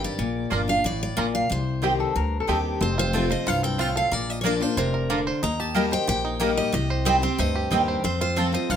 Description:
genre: bluegrass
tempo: 184 BPM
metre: 4/4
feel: straight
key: unclear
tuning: A4 = 439 Hz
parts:
  - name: picked steel-string acoustic guitar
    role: melody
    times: 0.0-8.8 s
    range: Bb4 to Bb5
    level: -28 LUFS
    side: equal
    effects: none
  - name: picked steel-string acoustic guitar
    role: accompaniment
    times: 0.0-8.8 s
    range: F2 to G4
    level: -27 LUFS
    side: left 2 dB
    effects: none
  - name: upright bass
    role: bass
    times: 0.0-8.8 s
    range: F1 to F2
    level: -28 LUFS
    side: left 1 dB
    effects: none
  - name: bluegrass banjo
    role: melody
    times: 0.5-8.8 s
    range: C4 to C5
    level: -30 LUFS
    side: right 4 dB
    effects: none
  - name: mandolin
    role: stabs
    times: 0.5-8.5 s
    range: Bb3 to Bb5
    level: -27 LUFS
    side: right 4 dB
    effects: none
  - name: lap resonator guitar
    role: second line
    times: 1.8-2.8 s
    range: G4 to Bb4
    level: -28 LUFS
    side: left 5 dB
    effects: none
room: moderate studio reverb, RT60 0.9 s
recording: none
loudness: -21 LUFS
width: side -8 dB against mid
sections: 0.0-2.8 A section; 2.8-8.8 B section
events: none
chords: 0.2 Bb; 1.5 Cm; 2.8 F; 4.1 Bb; 5.4 Eb; 6.7 Cm; 8.0 F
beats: | 0.19 0.52 0.84 1.17 | 1.50 1.83 2.16 2.48 | 2.81 3.14 3.47 3.79 | 4.12 4.45 4.77 5.10 | 5.43 5.75 6.08 6.41 | 6.74 7.06 7.39 7.71 | 8.04 8.37 8.70

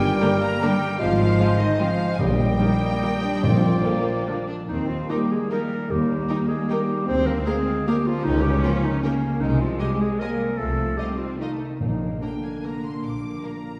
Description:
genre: classical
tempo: 137-168 BPM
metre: 3/4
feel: rubato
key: Eb major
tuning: A4 = 440 Hz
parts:
  - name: rich studio violin section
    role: melody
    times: 0.0-13.8 s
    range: Eb5 to D6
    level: -37 LUFS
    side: equal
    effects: none
  - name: hollow small flute group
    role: second line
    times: 0.0-4.3 s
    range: Eb5 to Bb5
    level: -36 LUFS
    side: equal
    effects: none
  - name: mellow clarinet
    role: second line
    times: 0.0-13.8 s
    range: Db4 to C5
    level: -32 LUFS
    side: equal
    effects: none
  - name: warm oboe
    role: second line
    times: 0.0-4.5 s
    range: Bb4 to Eb5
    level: -34 LUFS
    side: equal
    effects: none
  - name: mellow bassoon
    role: accompaniment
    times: 0.0-4.5 s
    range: F3 to Ab3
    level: -31 LUFS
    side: equal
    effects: none
  - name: warm French horn section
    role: sustained chords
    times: 0.0-13.8 s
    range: Db3 to C4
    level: -32 LUFS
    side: equal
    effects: none
  - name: concert harp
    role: arpeggios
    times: 0.0-13.8 s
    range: G2 to G5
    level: -33 LUFS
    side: equal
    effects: none
  - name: dark tuba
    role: bass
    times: 0.0-3.8 s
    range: G1 to Bb1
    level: -32 LUFS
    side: equal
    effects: none
  - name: rich symphonic cello section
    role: bass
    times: 0.0-13.8 s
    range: Eb3 to Db4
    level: -32 LUFS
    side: equal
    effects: none
  - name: rich symphonic double bass section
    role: bass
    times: 0.0-13.4 s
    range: G1 to Eb2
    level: -30 LUFS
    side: equal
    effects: none
  - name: warm symphonic violin section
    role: second line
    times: 0.2-13.5 s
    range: Bb3 to Eb5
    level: -36 LUFS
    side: equal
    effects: none
  - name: warm symphonic viola section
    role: accompaniment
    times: 0.2-13.5 s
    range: D3 to Eb4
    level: -33 LUFS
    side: equal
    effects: none
  - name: timpani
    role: percussion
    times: 2.2-4.0, 11.8-12.4 s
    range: Bb2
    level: -28 LUFS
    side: equal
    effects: none
room: wet scoring stage reverb, RT60 1.6 s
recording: heard from further back in the room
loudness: -23 LUFS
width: mono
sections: 0.0-4.7 A section; 4.7-13.8 B section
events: none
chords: 0.0 Gm; 1.0 Fm/Ab; 2.2 Eb/Bb; 3.4 Bb; 4.7 Eb; 7.1 Bb/D; 8.2 Eb7/Db; 9.4 Ab/C; 10.6 F7/C; 11.8 Bb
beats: 0.22 0.62 | 1.00 1.39 1.80 | 2.20 2.61 3.04 | 3.44 3.85 4.28 | 4.69 5.09 5.51 | 5.89 6.28 6.69 | 7.08 7.46 7.87 | 8.25 8.63 9.03 | 9.41 9.79 10.20 | 10.59 10.98 11.40 | 11.80 12.21 12.63 | 13.03 13.43

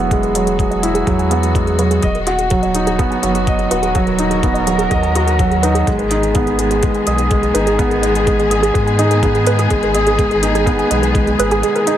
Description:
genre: piano and strings electronica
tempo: 125 BPM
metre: 4/4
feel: straight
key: G# minor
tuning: A4 = 440 Hz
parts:
  - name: warm studio string section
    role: sustained chords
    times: 0.0-12.0 s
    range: D#3 to A#4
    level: -22 LUFS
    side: left 3 dB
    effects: sidechain pumping
  - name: warbly dusty pluck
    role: arpeggios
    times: 0.0-12.0 s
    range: G#4 to G#5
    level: -22 LUFS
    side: right 3 dB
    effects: chorus, sidechain pumping, tape echo
  - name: dark baby grand piano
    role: riff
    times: 0.0-12.0 s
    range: F#3 to D#5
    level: -16 LUFS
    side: right 1 dB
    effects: tape echo
  - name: warm sub bass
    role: bass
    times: 0.0-11.6 s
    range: D#1 to G#2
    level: -20 LUFS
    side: left 1 dB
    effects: sidechain pumping
  - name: electronic hi-hat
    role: drums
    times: 0.1-12.0 s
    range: none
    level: -26 LUFS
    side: left 3 dB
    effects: none
  - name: electronic kick drum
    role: drums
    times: 0.1-11.2 s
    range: none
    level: -19 LUFS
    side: left 1 dB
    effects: none
room: moderate recital hall reverb, RT60 1.3 s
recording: none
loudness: -13 LUFS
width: side -11 dB against mid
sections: 0.0-12.0 A section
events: fade-in on string section 0.0-12.0; filter sweep on synth arpeggio sound 0.0-12.0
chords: 0.0 Eadd9; 2.0 B/D#; 5.9 G#m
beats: | 0.11 0.59 1.07 1.55 | 2.03 2.51 2.99 3.47 | 3.95 4.43 4.91 5.39 | 5.87 6.35 6.83 7.31 | 7.79 8.27 8.75 9.23 | 9.71 10.19 10.67 11.15 | 11.63

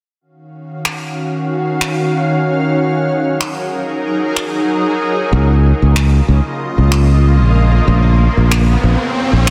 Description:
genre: sunset chillout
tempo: 94 BPM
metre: 4/4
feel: swing 55% on 16ths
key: Eb dorian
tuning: A4 = 440 Hz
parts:
  - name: shimmering ambient pad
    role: sustained chords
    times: 0.7-9.5 s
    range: Db3 to F5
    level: -19 LUFS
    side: equal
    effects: chorus, built-in reverb
  - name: electronic finger snaps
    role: drums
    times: 0.9-9.5 s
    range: none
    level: -24 LUFS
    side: equal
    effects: overdrive, soft clipping on snare
  - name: modern bright fingered electric bass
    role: bass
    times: 5.3-9.5 s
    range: Bb1 to Db2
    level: -12 LUFS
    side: equal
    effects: none
  - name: riser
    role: sound effects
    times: 6.6-9.5 s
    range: none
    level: -25 LUFS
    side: equal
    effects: none
room: moderate lush hall reverb, RT60 2.0 s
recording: dense, heavily limited modern master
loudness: -14 LUFS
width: mono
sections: 0.2-9.5 A section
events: riser 6.6-9.5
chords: 0.2 Ebm9; 2.8 Gb69; 5.3 Db69; 7.9 Bbm9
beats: | 0.22 0.86 1.50 2.13 | 2.77 3.41 4.05 4.69 | 5.33 5.96 6.60 7.24 | 7.88 8.52 9.15

